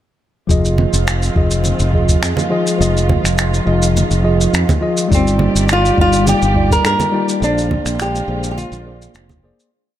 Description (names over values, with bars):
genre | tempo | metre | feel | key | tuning
sunset chillout | 104 BPM | 4/4 | straight | F dorian | A4 = 444 Hz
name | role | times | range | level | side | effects
tine electric piano | accompaniment | 0.5-9.7 s | F3 to Eb5 | -19 LUFS | moving between left 5 dB and right 4 dB | auto-pan, tape echo
dark studio string section | sustained chords | 0.5-9.7 s | D3 to D5 | -24 LUFS | right 1 dB | none
modern bright fingered electric bass | bass | 0.5-9.5 s | F1 to G2 | -17 LUFS | equal | none
electronic kick drum | drums | 0.5-9.4 s | none | -17 LUFS | equal | none
shaker and finger snaps | drums | 0.5-9.7 s | none | -22 LUFS | equal | none
congas | percussion | 0.8-9.4 s | none | -21 LUFS | right 3 dB | none
flamenco guitar | melody | 5.1-9.4 s | C4 to Bb4 | -17 LUFS | right 1 dB | tape echo
room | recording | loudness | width
light reverb, small room ambience | none | -12 LUFS | side -12 dB against mid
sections
0.5-9.7 groove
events
fade-out 6.7-9.7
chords
0.5 Fm7; 5.1 Ebmaj7/G; 7.4 Bb9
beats
| 0.50 1.07 1.65 2.23 | 2.81 3.38 3.96 4.54 | 5.11 5.69 6.27 6.84 | 7.42 8.00 8.57 9.15